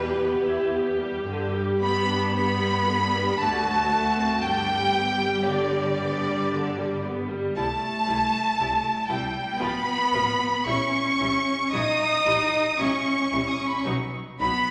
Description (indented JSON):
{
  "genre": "classical, slow romantic movement for string orchestra",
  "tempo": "57 BPM",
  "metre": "3/4",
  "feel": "rubato",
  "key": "unclear",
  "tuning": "A4 = 440 Hz",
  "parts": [
    { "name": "rich chamber violin section", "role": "melody", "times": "0.0-14.7 s", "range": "B4 to D#6", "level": "-29 LUFS", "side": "equal", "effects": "none" },
    { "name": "clear chamber violin section", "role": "second line", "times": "0.0-14.7 s", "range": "B4 to D#6", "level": "-30 LUFS", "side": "equal", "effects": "none" },
    { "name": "rich chamber viola section", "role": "accompaniment", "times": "0.0-14.5 s", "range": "D3 to G4", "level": "-31 LUFS", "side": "equal", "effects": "none" },
    { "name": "rich chamber cello section", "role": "bass", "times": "0.0-14.7 s", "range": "B2 to D#4", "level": "-31 LUFS", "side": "equal", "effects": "none" },
    { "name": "rich chamber double bass section", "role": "bass", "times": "0.0-14.5 s", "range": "G1 to G2", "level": "-35 LUFS", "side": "equal", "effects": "none" }
  ],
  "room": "wet scoring stage reverb, RT60 1.7 s",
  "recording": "none",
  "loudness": "-24 LUFS",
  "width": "mono",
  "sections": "0.0-14.7 A section",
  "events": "none",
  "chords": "0.0 Em; 1.3 G; 3.4 D7; 4.4 G; 7.6 C; 9.6 F/A; 10.7 A#dim7; 13.9 B",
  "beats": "0.17 | 1.26 2.34 3.39 | 4.43 5.47 6.52 | 7.55 8.58 9.59 | 10.66 11.72 12.79 | 13.86"
}